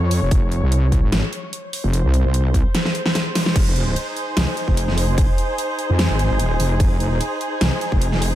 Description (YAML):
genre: heavy wobble dubstep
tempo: 148 BPM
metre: 4/4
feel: swing 53% on 16ths, half-time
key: F minor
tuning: A4 = 440 Hz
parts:
  - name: wobble bass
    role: bass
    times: 0.0-8.3 s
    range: Eb1 to F2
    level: -18 LUFS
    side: equal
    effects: chorus, overdrive
  - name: muted chamber string section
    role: texture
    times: 0.0-8.3 s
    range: Eb4 to Db5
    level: -26 LUFS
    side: right 1 dB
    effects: sidechain pumping
  - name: dubstep drum kit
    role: drums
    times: 0.1-8.3 s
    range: crash cymbal, hi-hat, ride cymbal, snare drum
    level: -23 LUFS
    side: equal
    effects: overdrive
  - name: electronic kick drum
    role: drums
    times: 0.3-8.0 s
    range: none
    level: -19 LUFS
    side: equal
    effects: none
room: light reverb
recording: none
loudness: -17 LUFS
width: side -13 dB against mid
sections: 0.0-3.6 A section; 3.6-8.3 A section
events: drop 0.0-3.6, 3.6-8.3; break 2.7-3.6; drum fill 2.7-3.6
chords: 0.0 F5; 3.6 Fm